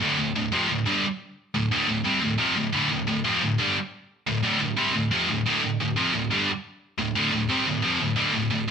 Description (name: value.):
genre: metal.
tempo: 176 BPM.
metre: 4/4.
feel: straight.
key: D minor.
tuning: A4 = 440 Hz.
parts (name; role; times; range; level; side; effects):
scooped high-gain guitar; solo; 0.0-8.7 s; D2 to C4; -22 LUFS; equal; distortion.
room: moderate stone room reverb, RT60 0.9 s.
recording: band playing live in one room.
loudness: -22 LUFS.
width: side -6 dB against mid.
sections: 0.0-8.7 A section.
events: none.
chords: 0.0 Dm.